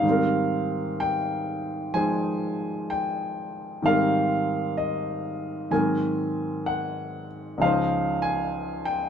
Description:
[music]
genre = jazz ballad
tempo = 63 BPM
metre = 4/4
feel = swing 66% on 8ths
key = Ab major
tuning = A4 = 440 Hz
[part]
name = warm baby grand piano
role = solo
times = 0.0-9.1 s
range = Db2 to Ab5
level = -24 LUFS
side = equal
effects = none
[sound]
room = moderate studio reverb, RT60 0.6 s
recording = band playing live in one room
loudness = -24 LUFS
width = side -8 dB against mid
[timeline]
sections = 0.0-7.6 A section; 7.6-9.1 B section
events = none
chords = 0.0 Abmaj9; 5.7 Ab7; 7.6 Dbmaj9

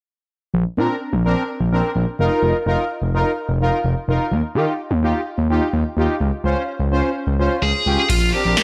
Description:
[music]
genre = synth-pop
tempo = 127 BPM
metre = 4/4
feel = straight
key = unclear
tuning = A4 = 440 Hz
[part]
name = smooth gliding synth bass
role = bass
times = 0.5-8.6 s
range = F1 to Eb3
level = -22 LUFS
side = equal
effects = none
[part]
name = analog synth brass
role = accompaniment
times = 0.8-8.6 s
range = C4 to C5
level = -24 LUFS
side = equal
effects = chorus
[part]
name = high-gain lead guitar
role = melody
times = 7.6-8.6 s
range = F4 to Ab4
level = -21 LUFS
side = equal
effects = distortion
[part]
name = electro analog drum machine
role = drums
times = 8.1-8.6 s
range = crash cymbal, kick drum, snare drum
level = -21 LUFS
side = equal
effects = gated reverb
[sound]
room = moderate plate reverb, RT60 1.4 s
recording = bright 1980s-style digital production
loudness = -20 LUFS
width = mono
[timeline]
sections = 0.5-8.1 A section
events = none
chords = 0.5 Bbadd9; 2.2 F7sus4; 4.3 Ebadd9; 6.2 Dbmaj7; 8.1 Bbadd9

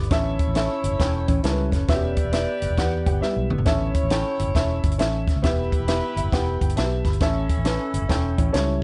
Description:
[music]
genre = uptempo 1960s-style soul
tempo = 135 BPM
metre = 4/4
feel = swing 64% on 8ths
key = unclear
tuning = A4 = 440 Hz
[part]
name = warm upright piano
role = accompaniment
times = 0.0-8.8 s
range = B3 to B5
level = -29 LUFS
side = equal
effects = none
[part]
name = vintage hollow-body jazz guitar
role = riff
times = 0.0-3.9, 8.4-8.8 s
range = D3 to A4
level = -32 LUFS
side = equal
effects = none
[part]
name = vintage muted fingered electric bass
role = bass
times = 0.0-8.8 s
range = E1 to E2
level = -28 LUFS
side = equal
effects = none
[part]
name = compact cocktail drum kit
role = drums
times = 0.0-8.7 s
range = hi-hat, kick drum, snare drum, toms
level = -26 LUFS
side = equal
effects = none
[part]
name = clear saxophone section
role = second line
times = 0.1-8.8 s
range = C#4 to D5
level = -33 LUFS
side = equal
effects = none
[sound]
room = light reverb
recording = nothing above 11.0 kHz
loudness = -23 LUFS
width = mono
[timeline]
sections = 0.0-8.8 A section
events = drum fill 3.2-3.7; upright piano fill 5.9-7.2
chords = 0.1 A; 1.9 Em; 7.2 A

